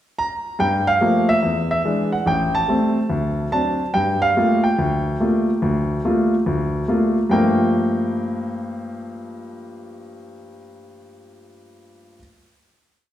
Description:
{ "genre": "solo jazz", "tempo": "143 BPM", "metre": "4/4", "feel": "swing 65% on 8ths", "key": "G minor", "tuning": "A4 = 441 Hz", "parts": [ { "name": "warm baby grand piano", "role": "solo", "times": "0.2-12.2 s", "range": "A1 to Bb5", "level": "-18 LUFS", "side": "equal", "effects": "none" } ], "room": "wet recital hall reverb, RT60 1.4 s", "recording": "recorded in a church or concert hall", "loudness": "-17 LUFS", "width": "side -12 dB against mid", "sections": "0.0-0.6 pickup bar; 0.6-7.3 A section; 7.3-10.7 final chord", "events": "none", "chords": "0.0 N.C.; 0.6 Gm9; 1.4 E7; 2.3 Am7; 3.1 D7; 3.9 Gm9", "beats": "0.17 | 0.59 1.01 1.43 1.85 | 2.27 2.68 3.10 3.52 | 3.94 4.36 4.78 5.20 | 5.62 6.04 6.46 6.88 | 7.31 7.73 8.15 8.57 | 8.99 9.42 9.84 10.26" }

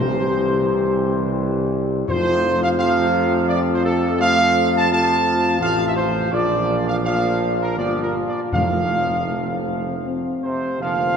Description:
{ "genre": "classical, ceremonial fanfare", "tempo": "77-86 BPM", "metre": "3/4", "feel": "straight", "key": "F major", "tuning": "A4 = 441 Hz", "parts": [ { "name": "mellow trumpet section", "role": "melody", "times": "0.0-11.2 s", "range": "A4 to A5", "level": "-21 LUFS", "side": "right 1 dB", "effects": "none" }, { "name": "clear trombone section", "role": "sustained chords", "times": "0.0-11.2 s", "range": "Bb2 to F3", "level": "-28 LUFS", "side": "right 3 dB", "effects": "none" }, { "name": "mellow French horn section", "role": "sustained chords", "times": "0.0-11.2 s", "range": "D3 to G4", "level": "-24 LUFS", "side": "left 4 dB", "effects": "none" }, { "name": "mellow tuba", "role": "bass", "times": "0.0-11.2 s", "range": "F1 to F2", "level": "-23 LUFS", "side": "right 2 dB", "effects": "none" }, { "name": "timpani", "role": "percussion", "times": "0.0-3.1, 8.5-9.6 s", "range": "F2 to C3", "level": "-28 LUFS", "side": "equal", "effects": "none" } ], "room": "wet cathedral reverb, RT60 5.7 s", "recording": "none", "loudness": "-17 LUFS", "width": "side -7 dB against mid", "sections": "0.0-10.8 A section", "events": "none", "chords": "0.0 C; 2.1 F; 6.3 Bb5; 8.5 F", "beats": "0.67 1.37 | 2.08 2.78 3.48 | 4.20 4.90 5.61 | 6.32 7.04 7.77 | 8.53 9.29 10.04 | 10.80" }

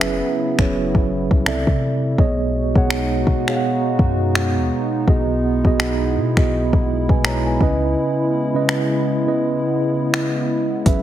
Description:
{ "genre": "contemporary R&B", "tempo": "83 BPM", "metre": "4/4", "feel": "swing 58% on 16ths", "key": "C# minor", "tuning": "A4 = 440 Hz", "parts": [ { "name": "mellow tine electric piano", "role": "accompaniment", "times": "0.0-11.0 s", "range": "B2 to A#5", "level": "-20 LUFS", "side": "right 2 dB", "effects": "medium stereo tremolo" }, { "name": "hollow soft pad", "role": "sustained chords", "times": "0.0-11.0 s", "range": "C#3 to F#4", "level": "-24 LUFS", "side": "left 1 dB", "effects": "chorus" }, { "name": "clean 808-style bass", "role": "bass", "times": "0.0-11.0 s", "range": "E1 to C3", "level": "-23 LUFS", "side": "left 1 dB", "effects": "none" }, { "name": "smooth R&B drum kit", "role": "drums", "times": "0.0-11.0 s", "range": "finger snaps, hi-hat, kick drum", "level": "-19 LUFS", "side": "left 1 dB", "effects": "none" } ], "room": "light reverb", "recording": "heavily compressed radio sound", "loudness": "-16 LUFS", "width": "side -12 dB against mid", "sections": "0.0-11.0 A section", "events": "kick muted 8.0-10.9", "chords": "0.0 F#7sus4; 1.5 C6; 2.2 B6; 5.1 Emaj7/B; 7.6 C#m7", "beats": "0.01 0.74 1.46 | 2.18 2.91 3.63 4.35 | 5.08 5.80 6.52 7.24 | 7.97 8.69 9.41 10.14 | 10.86" }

